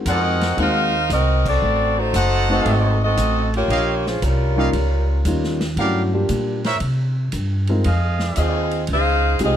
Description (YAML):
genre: jazz, big band swing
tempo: 116 BPM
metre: 4/4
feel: swing 68% on 8ths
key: unclear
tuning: A4 = 440 Hz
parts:
  - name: warm grand piano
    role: accompaniment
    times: 0.0-9.6 s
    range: Gb3 to Cb5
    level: -24 LUFS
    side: left 2 dB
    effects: none
  - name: mellow saxophone section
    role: melody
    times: 0.1-9.6 s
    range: G3 to F5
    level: -20 LUFS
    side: equal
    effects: none
  - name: clear trumpet section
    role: stabs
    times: 0.1-8.7 s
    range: G4 to Gb5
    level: -25 LUFS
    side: right 2 dB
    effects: none
  - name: upright bass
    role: bass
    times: 0.1-9.6 s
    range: F#1 to C3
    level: -20 LUFS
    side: equal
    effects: none
  - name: vintage drum kit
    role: drums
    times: 0.1-9.6 s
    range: crash cymbal, hi-hat, kick drum, ride cymbal, snare drum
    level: -32 LUFS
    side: equal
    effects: none
room: little or no reverb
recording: close, detailed microphones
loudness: -17 LUFS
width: side -10 dB against mid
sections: 0.0-9.6 A section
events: band accent 1.4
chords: 0.0 Ab9; 1.6 Adim7; 3.7 Eb9; 5.8 Gm7; 6.8 C5; 7.8 Fm7